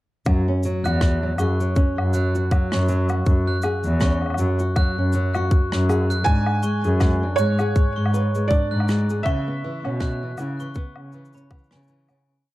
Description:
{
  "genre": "folktronica",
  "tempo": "80 BPM",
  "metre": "4/4",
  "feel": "swing 56% on 16ths",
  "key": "unclear",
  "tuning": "A4 = 440 Hz",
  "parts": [
    { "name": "nylon-string guitar", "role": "arpeggios", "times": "0.3-12.3 s", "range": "E3 to B4", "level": "-28 LUFS", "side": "equal", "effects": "ping-pong delay" },
    { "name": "muted cello", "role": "bass", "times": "0.3-12.2 s", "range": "E2 to C#3", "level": "-22 LUFS", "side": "equal", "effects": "none" },
    { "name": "cabasa, woodblock and rim click", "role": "drums", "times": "0.3-12.2 s", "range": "none", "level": "-32 LUFS", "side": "left 1 dB", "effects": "none" },
    { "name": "electronic kick drum", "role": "drums", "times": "0.3-11.7 s", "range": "none", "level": "-19 LUFS", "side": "equal", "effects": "none" },
    { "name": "glockenspiel with hard plastic mallets", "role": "second line", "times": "0.8-12.2 s", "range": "G#5 to F#6", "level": "-32 LUFS", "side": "left 1 dB", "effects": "ping-pong delay" },
    { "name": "felt-muted upright piano", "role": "melody", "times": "6.2-11.8 s", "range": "C#5 to G#5", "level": "-27 LUFS", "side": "right 4 dB", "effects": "none" }
  ],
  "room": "small room ambience",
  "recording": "dark, warm production",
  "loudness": "-19 LUFS",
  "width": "side -17 dB against mid",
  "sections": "0.3-12.3 groove",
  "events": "fade-out 8.3-12.3",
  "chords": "0.3 F#5; 6.3 G#(b5, no3); 9.3 C#m7"
}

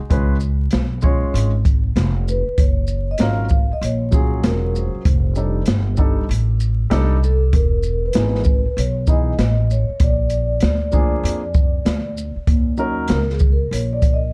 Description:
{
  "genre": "hip hop, jazz-hop",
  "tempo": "97 BPM",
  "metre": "4/4",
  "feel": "swing 64% on 16ths",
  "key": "unclear",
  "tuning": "A4 = 440 Hz",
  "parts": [
    { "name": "upright bass", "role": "bass", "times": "0.0-14.3 s", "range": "Fb1 to F2", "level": "-22 LUFS", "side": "equal", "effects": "none" },
    { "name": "dark baby grand piano", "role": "accompaniment", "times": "0.1-13.2 s", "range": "E3 to Db5", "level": "-27 LUFS", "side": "equal", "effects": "none" },
    { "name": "open jazz drum kit", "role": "drums", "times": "0.1-14.2 s", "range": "hi-hat, kick drum, shaker, snare drum", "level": "-21 LUFS", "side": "equal", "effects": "none" },
    { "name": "vibraphone with soft mallets", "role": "melody", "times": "2.3-14.3 s", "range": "Ab4 to F5", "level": "-28 LUFS", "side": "equal", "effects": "none" }
  ],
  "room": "studio ambience",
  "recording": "dark, warm production, vinyl crackle",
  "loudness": "-18 LUFS",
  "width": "mono",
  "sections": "0.0-12.5 A section; 12.5-14.3 B section",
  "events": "vibraphone solo 12.5-14.3",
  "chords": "0.1 Db7; 2.6 Gbmaj7; 5.1 F13; 7.5 Emaj7; 10.0 Bb7; 12.5 Ebm7"
}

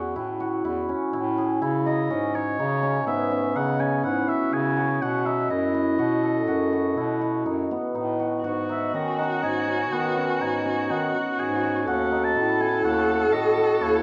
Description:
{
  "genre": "contemporary instrumental, chamber music in an uneven meter",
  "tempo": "123 BPM",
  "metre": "7/4",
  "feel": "straight",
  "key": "C# minor",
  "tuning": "A4 = 439 Hz",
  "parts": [
    { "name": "cimbalom", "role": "arpeggios", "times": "0.0-14.0 s", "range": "B3 to A4", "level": "-27 LUFS", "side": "equal", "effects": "none" },
    { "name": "clear bass clarinet", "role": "bass", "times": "0.0-14.0 s", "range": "D#2 to D#3", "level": "-31 LUFS", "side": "equal", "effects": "none" },
    { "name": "warm oboe", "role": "melody", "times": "1.9-14.0 s", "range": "C#5 to A5", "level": "-31 LUFS", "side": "equal", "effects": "none" },
    { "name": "warm viola", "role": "second line", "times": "8.4-14.0 s", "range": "F#4 to A4", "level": "-29 LUFS", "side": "equal", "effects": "none" }
  ],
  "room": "moderate recital hall reverb, RT60 1.4 s",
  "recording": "dark, warm production",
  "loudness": "-24 LUFS",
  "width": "mono",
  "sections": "0.0-14.0 A section",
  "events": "none",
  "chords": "0.0 Amaj7; 1.6 C#m7; 5.0 B7; 8.4 G#7sus4; 11.9 D#m7b5"
}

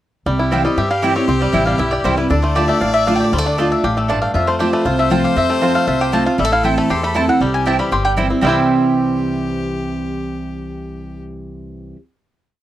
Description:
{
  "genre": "bluegrass",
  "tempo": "235 BPM",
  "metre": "4/4",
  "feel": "straight",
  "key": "C major",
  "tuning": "A4 = 439 Hz",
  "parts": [
    { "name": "clear fiddle", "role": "second line", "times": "0.3-11.2 s", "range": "G4 to D5", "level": "-25 LUFS", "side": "left 5 dB", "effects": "none" },
    { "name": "picked steel-string acoustic guitar", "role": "accompaniment", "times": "0.3-12.0 s", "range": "E2 to F4", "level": "-20 LUFS", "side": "right 1 dB", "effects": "none" },
    { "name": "bluegrass banjo", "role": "arpeggios", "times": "0.3-12.0 s", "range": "G3 to G4", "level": "-22 LUFS", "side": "right 1 dB", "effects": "none" },
    { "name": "upright bass", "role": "bass", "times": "0.3-11.9 s", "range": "G1 to G2", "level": "-23 LUFS", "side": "equal", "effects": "none" },
    { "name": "mandolin", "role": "melody", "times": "0.5-11.9 s", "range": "G4 to C6", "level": "-20 LUFS", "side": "left 1 dB", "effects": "none" },
    { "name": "mandolin", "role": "stabs", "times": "0.5-12.0 s", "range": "A3 to A5", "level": "-21 LUFS", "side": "right 6 dB", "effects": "none" }
  ],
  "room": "light reverb",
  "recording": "dry, close 1970s-style studio recording",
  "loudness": "-14 LUFS",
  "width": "side -13 dB against mid",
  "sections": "0.3-8.4 A section; 8.4-10.5 final chord",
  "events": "none",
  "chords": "0.3 C; 2.3 Dm; 4.3 F; 6.4 Am; 7.4 C"
}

